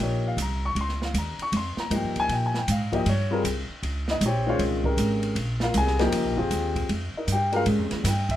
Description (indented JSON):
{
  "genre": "modal jazz",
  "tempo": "156 BPM",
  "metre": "4/4",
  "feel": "swing 65% on 8ths",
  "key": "Bb dorian",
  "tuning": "A4 = 443 Hz",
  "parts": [
    { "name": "dark baby grand piano", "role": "accompaniment", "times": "0.0-8.4 s", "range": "Eb3 to Db6", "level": "-26 LUFS", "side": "left 2 dB", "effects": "none" },
    { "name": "upright bass", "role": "bass", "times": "0.0-8.4 s", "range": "F1 to Bb2", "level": "-26 LUFS", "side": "right 1 dB", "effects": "none" },
    { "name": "open jazz drum kit", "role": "drums", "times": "0.0-8.4 s", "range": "hi-hat, kick drum, ride cymbal, snare drum", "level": "-32 LUFS", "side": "right 1 dB", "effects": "none" }
  ],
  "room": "light reverb",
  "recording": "none",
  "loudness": "-23 LUFS",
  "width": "side -12 dB against mid",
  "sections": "0.0-8.4 A section",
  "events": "none",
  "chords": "0.0 Bbm69; 5.4 Ebsus2"
}